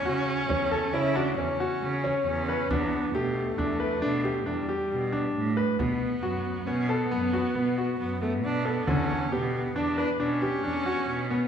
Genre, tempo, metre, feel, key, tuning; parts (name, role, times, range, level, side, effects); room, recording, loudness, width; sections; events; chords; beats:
contemporary instrumental, chamber music in an uneven meter; 136 BPM; 7/4; straight; E dorian; A4 = 440 Hz
warm viola; second line; 0.0-11.5 s; G3 to E4; -31 LUFS; right 1 dB
bright concert grand piano; arpeggios; 0.1-11.5 s; D3 to B4; -28 LUFS; left 1 dB
rich cello; bass; 0.1-11.5 s; E2 to C#3; -31 LUFS; right 2 dB
frame drum; percussion; 0.5-10.6 s; -37 LUFS; right 1 dB
wet scoring stage reverb, RT60 2.0 s; recorded in a church or concert hall; -25 LUFS; side -8 dB against mid
0.0-5.8 A section; 5.8-11.5 B section
0.0 F#7(no3)/E; 2.7 Em7; 5.8 B5; 8.9 Em9
0.06 0.50 0.94 1.38 1.82 2.27 | 2.71 3.15 3.59 4.03 4.47 4.91 5.36 | 5.80 6.24 6.68 7.12 7.56 8.00 8.44 | 8.88 9.32 9.77 10.21 10.65 11.09